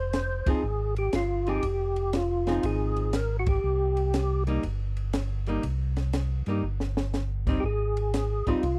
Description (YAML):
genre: soul jazz organ trio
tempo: 120 BPM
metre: 4/4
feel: swing 66% on 8ths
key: C minor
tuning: A4 = 439 Hz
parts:
  - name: percussive tonewheel organ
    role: melody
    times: 0.0-4.4, 7.6-8.8 s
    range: F4 to C5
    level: -31 LUFS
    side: equal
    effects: slow rotary speaker, chorus vibrato
  - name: mellow tonewheel organ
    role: bass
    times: 0.0-8.8 s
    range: F1 to G2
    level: -31 LUFS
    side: equal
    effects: slow rotary speaker
  - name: compact cocktail drum kit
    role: drums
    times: 0.1-8.8 s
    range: crash cymbal, hi-hat, kick drum, ride cymbal, snare drum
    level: -33 LUFS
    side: equal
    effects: none
  - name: archtop guitar, miked and amplified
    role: accompaniment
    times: 0.5-8.6 s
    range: F3 to Ab4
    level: -32 LUFS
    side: equal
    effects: none
room: little or no reverb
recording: dry, close 1970s-style studio recording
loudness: -28 LUFS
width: mono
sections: 0.0-8.8 A section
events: band accent 0.4, 3.4; drum fill 6.6-7.1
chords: 0.0 Fm7; 3.6 Cm; 7.6 Abmaj7